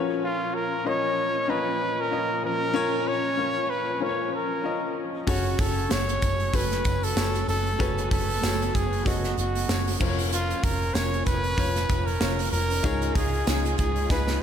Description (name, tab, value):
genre	piano-driven pop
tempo	95 BPM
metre	4/4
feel	swing 56% on 16ths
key	unclear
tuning	A4 = 438 Hz
part	bright upright piano	accompaniment	0.0-14.4 s	Ab2 to Bb5	-30 LUFS	left 5 dB	slapback echo
part	dark studio string section	sustained chords	0.0-14.4 s	Bb2 to Ab4	-35 LUFS	right 2 dB	stereo widening
part	breathy trumpet	melody	0.2-14.4 s	F4 to Db5	-28 LUFS	right 1 dB	slapback echo
part	vintage muted picked electric bass	bass	5.3-14.4 s	F1 to Db2	-28 LUFS	equal	none
part	modern studio drum kit	drums	5.3-14.4 s	crash cymbal, hi-hat, kick drum, snare drum	-28 LUFS	right 1 dB	none
part	tambourine	percussion	5.3-14.3 s	none	-44 LUFS	right 8 dB	none
room	moderate lush hall reverb, RT60 2.7 s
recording	big arena sound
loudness	-23 LUFS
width	side -8 dB against mid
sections	0.0-14.4 A section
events	drum fill 14.1-14.4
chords	0.0 Bbm; 5.3 Gbm; 10.0 Bbm/F; 12.8 Dbadd9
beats	| 0.23 0.86 1.49 2.12 | 2.75 3.38 4.01 4.64 | 5.27 5.91 6.54 7.17 | 7.80 8.43 9.06 9.69 | 10.32 10.95 11.58 12.21 | 12.84 13.47 14.11